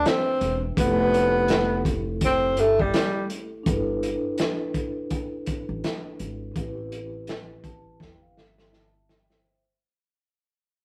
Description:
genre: hip hop, jazz-hop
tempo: 83 BPM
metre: 4/4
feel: swing 58% on 16ths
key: G mixolydian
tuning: A4 = 441 Hz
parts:
  - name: breathy tenor saxophone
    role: melody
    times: 0.0-3.3 s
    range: G3 to C4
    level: -24 LUFS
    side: equal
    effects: none
  - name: vibraphone with soft mallets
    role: accompaniment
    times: 0.0-9.6 s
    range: A3 to A5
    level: -34 LUFS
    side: equal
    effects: none
  - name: upright bass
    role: bass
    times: 0.0-8.3 s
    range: E1 to E2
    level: -32 LUFS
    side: equal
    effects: none
  - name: vintage drum kit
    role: drums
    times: 0.1-9.4 s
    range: hi-hat, kick drum, snare drum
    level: -30 LUFS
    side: equal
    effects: none
room: light reverb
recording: rough rehearsal-room recording, warm saturation, faint mains hum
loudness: -25 LUFS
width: mono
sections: 0.0-3.7 A section; 3.7-9.4 B section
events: fade-out 3.7-9.4; vibraphone fill 7.3-9.4; drum fill 8.0-9.4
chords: 0.0 Cmaj9; 0.8 Fmaj9; 3.7 G69; 6.6 Am9

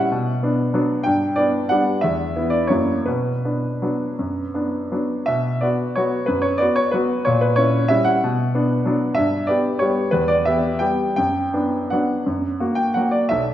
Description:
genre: classical, piano waltz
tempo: 156-200 BPM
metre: 3/4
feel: rubato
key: B minor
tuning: A4 = 441 Hz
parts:
  - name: bright grand piano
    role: solo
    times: 0.0-13.5 s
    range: B1 to G5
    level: -18 LUFS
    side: equal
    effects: none
room: wet recital hall reverb, RT60 1.7 s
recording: heard from further back in the room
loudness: -18 LUFS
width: side -12 dB against mid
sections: 0.0-5.3 A section; 5.3-13.5 A section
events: none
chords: 0.1 Bm; 1.1 G; 2.0 E5; 2.7 F#7; 3.1 Bm; 7.3 A#dim7; 8.2 Bm; 9.2 G; 10.1 Em; 11.2 Bm/F#; 12.3 F#

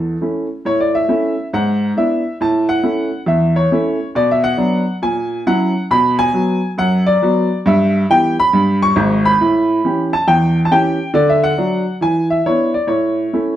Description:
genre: jazz, stride piano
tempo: 137 BPM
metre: 4/4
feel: swing 65% on 8ths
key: A major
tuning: A4 = 440 Hz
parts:
  - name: warm baby grand piano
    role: solo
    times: 0.0-13.6 s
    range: G#1 to C#6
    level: -13 LUFS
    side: equal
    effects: none
room: wet studio reverb, RT60 0.8 s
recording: heard from further back in the room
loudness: -13 LUFS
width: side -12 dB against mid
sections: 0.7-13.6 A section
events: none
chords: 0.0 A; 1.5 E7/G#; 2.4 A; 4.2 Bm; 5.0 F#7/A#; 5.9 Bm; 7.7 Em/G; 9.4 A7; 11.2 D; 12.0 E5; 12.9 A

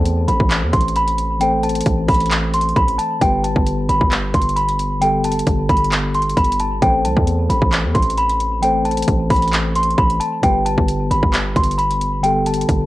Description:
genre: hip hop, trap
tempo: 133 BPM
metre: 4/4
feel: half-time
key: A minor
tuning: A4 = 440 Hz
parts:
  - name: celesta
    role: melody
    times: 0.0-12.9 s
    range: G5 to C6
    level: -19 LUFS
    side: equal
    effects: low-pass filter, tape echo
  - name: mellow tine electric piano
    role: accompaniment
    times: 0.0-12.9 s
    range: D3 to C5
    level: -23 LUFS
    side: left 1 dB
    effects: medium stereo tremolo, low-pass filter
  - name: hard-hitting 808-style bass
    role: bass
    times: 0.0-12.9 s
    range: G1 to E2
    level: -21 LUFS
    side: equal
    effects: none
  - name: trap drum kit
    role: drums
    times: 0.1-12.8 s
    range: handclaps, hi-hat, kick drum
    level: -20 LUFS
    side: equal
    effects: cassette tape
room: light reverb, digital ambience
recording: home recording on cassette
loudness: -15 LUFS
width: side -16 dB against mid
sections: 0.0-12.9 A section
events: none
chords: 0.0 Am; 3.2 G; 6.8 Am; 10.4 G

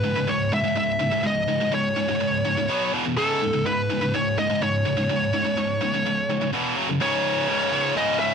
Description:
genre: metal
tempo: 125 BPM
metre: 4/4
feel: straight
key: C# minor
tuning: A4 = 440 Hz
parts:
  - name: high-gain lead guitar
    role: melody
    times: 0.0-8.3 s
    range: A4 to E5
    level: -24 LUFS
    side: equal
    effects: distortion, slapback echo
  - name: heavy high-gain guitar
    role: riff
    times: 0.0-8.3 s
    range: C#2 to B3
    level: -23 LUFS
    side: equal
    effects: distortion
room: digital ambience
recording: dry, close 1970s-style studio recording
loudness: -21 LUFS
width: side -6 dB against mid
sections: 0.0-7.0 A section; 7.0-8.3 B section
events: none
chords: 0.0 C#m; 2.7 B5; 2.9 E5; 3.2 C#5; 6.5 E5; 6.8 F#5; 7.0 C#5

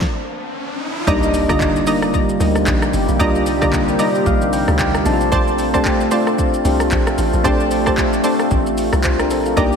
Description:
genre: amapiano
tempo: 113 BPM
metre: 4/4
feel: swing 58% on 16ths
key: Bb major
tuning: A4 = 440 Hz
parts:
  - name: soft electric-piano-like synth keys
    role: accompaniment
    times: 0.0-9.8 s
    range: D3 to A5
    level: -18 LUFS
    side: left 1 dB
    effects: chorus
  - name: deep house drum kit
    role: drums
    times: 0.0-9.8 s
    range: handclaps, hi-hat, kick drum, rim click, shaker, snare drum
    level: -22 LUFS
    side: equal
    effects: none
  - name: riser and impact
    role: sound effects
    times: 0.0-3.2 s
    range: none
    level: -28 LUFS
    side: equal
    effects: none
  - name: deep dark ambient pad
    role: sustained chords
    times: 2.0-9.8 s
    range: C3 to G4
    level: -22 LUFS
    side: equal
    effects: chorus, built-in reverb, sidechain pumping
  - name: analog pluck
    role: stabs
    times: 1.1-9.7 s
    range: C5 to Bb5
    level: -23 LUFS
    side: right 3 dB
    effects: chorus, ping-pong delay
  - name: hollow log drum bass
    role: bass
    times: 1.1-9.8 s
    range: G1 to D2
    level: -21 LUFS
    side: equal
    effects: none
room: moderate lush hall reverb, RT60 2.0 s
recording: dreamy mix soaked in reverb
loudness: -14 LUFS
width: side -6 dB against mid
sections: 0.0-1.1 A section; 1.1-9.8 B section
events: riser 0.0-1.1; filter sweep 0.0-1.1; stop 0.0-1.1; drop 1.1-9.8; impact 1.1-3.2; synth keys fill 3.7-5.3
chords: 0.0 N.C.; 1.1 Cm9; 5.1 Bbmaj9

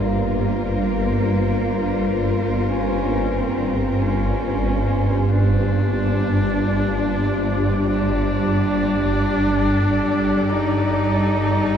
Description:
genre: dark ambient drone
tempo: 46 BPM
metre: 4/4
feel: straight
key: G minor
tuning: A4 = 440 Hz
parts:
  - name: rich horsehead fiddle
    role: melody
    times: 0.0-11.8 s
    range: Bb3 to Eb4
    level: -24 LUFS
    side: equal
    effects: shimmer reverb, ping-pong delay
  - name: warm studio cello section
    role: sustained chords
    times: 0.0-11.8 s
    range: G3 to D5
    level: -25 LUFS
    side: left 2 dB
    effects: shimmer reverb
  - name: swarming drone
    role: drone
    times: 0.0-11.8 s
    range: G1 to G2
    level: -20 LUFS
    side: equal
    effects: built-in reverb
room: wet cathedral reverb, RT60 6.2 s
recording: nothing above 10.8 kHz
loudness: -18 LUFS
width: side -8 dB against mid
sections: 0.0-11.8 A section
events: none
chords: 0.0 Bbm; 5.3 Gm

